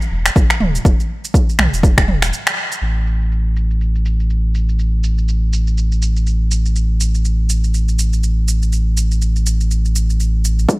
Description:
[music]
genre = afro house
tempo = 122 BPM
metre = 4/4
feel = swing 58% on 16ths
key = unclear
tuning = A4 = 439 Hz
[part]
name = deep house drum kit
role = drums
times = 0.0-10.8 s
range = finger snaps, shaker, toms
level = -19 LUFS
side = right 1 dB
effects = overdrive, low-pass filter on perc, small room ambience, low-pass filter on snare, low-pass filter on toms
[part]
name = warm sub bass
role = bass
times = 0.1-10.7 s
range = D1 to B1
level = -15 LUFS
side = equal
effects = tube saturation, sidechain pumping
[part]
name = electronic kick drum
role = drums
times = 0.4-2.1, 10.7-10.8 s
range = none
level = -14 LUFS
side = equal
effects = overdrive, high-pass filter on kick, small room ambience
[sound]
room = little or no reverb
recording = none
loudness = -14 LUFS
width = side -22 dB against mid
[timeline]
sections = 0.0-2.8 A section; 2.8-10.7 B section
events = break 2.3-2.8; band accent 2.4; filter sweep on drum 2.8-10.7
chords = none

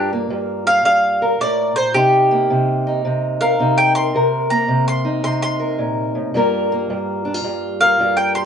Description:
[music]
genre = acoustic country blues, solo or duo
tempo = 109 BPM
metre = 4/4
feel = swing 65% on 8ths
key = G minor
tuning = A4 = 440 Hz
[part]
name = mandolin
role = melody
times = 0.0-8.5 s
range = G4 to C6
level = -16 LUFS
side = equal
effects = none
[part]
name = fingerpicked steel-string acoustic guitar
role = accompaniment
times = 0.0-8.5 s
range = G2 to Bb4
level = -18 LUFS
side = equal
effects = none
[sound]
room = moderate studio reverb, RT60 1.0 s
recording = band playing live in one room, nothing above 10.4 kHz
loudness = -15 LUFS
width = side -7 dB against mid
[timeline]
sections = 0.0-8.5 A section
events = none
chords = 0.0 Gm7; 1.9 Cm7; 6.3 Gm7

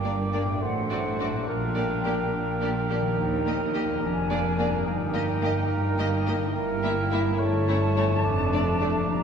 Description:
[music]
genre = cinematic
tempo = 71 BPM (dotted quarters)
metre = 6/8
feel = straight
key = unclear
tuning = A4 = 439 Hz
[part]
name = rich studio violin section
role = melody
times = 0.0-8.9 s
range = C#5 to E5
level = -37 LUFS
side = left 3 dB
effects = none
[part]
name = flute section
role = second line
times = 0.0-9.2 s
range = F#5 to Bb5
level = -34 LUFS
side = equal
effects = none
[part]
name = mellow cor anglais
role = second line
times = 0.0-9.2 s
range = Bb4 to D5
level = -32 LUFS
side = right 2 dB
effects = none
[part]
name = rich studio violin section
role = second line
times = 0.0-8.9 s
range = D4 to Ab4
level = -39 LUFS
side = left 3 dB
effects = none
[part]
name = warm clarinet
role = second line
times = 0.0-9.2 s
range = D4 to E4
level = -33 LUFS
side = left 1 dB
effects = none
[part]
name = rich studio viola section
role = accompaniment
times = 0.0-8.9 s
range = A3 to C4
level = -37 LUFS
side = right 3 dB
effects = none
[part]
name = warm bassoon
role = accompaniment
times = 0.0-9.2 s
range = G3 to Bb3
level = -32 LUFS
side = right 2 dB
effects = none
[part]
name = concert harp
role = arpeggios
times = 0.0-9.2 s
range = F2 to E5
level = -34 LUFS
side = left 6 dB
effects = none
[part]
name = clear studio cello section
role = bass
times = 0.0-9.2 s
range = Eb2 to Bb2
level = -31 LUFS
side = right 2 dB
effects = none
[part]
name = rich studio double bass section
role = bass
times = 0.0-9.2 s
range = F1 to Eb2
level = -30 LUFS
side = right 1 dB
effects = none
[part]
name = clear French horn section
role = sustained chords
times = 0.1-8.9 s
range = F#3 to E4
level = -36 LUFS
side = left 3 dB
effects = none
[sound]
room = wet church reverb, RT60 3.0 s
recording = none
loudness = -23 LUFS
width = side -7 dB against mid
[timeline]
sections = 0.0-9.2 A section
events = none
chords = 0.0 Gm; 0.6 D7/A; 1.5 Gm/Bb; 3.2 Eb; 4.0 Bb7/F; 4.9 Eb/G; 6.6 Edim/G; 7.4 A7/G; 8.2 Dm/F

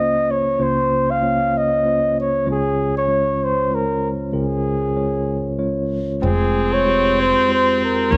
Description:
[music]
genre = acoustic folk-pop ballad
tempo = 96 BPM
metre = 3/4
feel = straight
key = F minor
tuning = A4 = 436 Hz
[part]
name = mellow flugelhorn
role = melody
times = 0.0-8.2 s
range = Ab4 to F5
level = -21 LUFS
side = equal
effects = none
[part]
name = mellow tine electric piano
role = accompaniment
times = 0.0-8.2 s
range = F1 to G5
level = -24 LUFS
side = equal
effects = none
[part]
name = clear viola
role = second line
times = 6.2-8.2 s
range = C4 to Db4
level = -22 LUFS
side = equal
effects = none
[part]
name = upright bass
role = bass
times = 6.2-8.2 s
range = F1 to Eb2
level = -25 LUFS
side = equal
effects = none
[sound]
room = wet spring reverb, RT60 1.1 s, small room ambience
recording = none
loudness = -19 LUFS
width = mono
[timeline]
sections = 0.0-6.2 A section; 6.2-8.2 A section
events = none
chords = 0.0 Bbmadd9/Db; 2.5 Db; 6.2 Fmadd9

